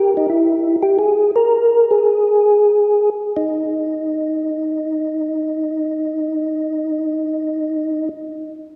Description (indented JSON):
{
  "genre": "jazz",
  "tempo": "free time",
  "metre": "none",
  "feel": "none",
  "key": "Eb major",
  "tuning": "A4 = 441 Hz",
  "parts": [
    { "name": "percussive tonewheel organ", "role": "solo", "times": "0.0-8.1 s", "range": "Eb4 to Bb4", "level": "-18 LUFS", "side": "equal", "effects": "slow rotary speaker, chorus vibrato" }
  ],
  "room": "wet church reverb, RT60 2.9 s",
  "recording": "recorded in a church or concert hall",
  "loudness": "-18 LUFS",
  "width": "mono",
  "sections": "0.0-3.3 A section; 3.3-8.8 B section",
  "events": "slowing down 0.0-3.3",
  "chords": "none"
}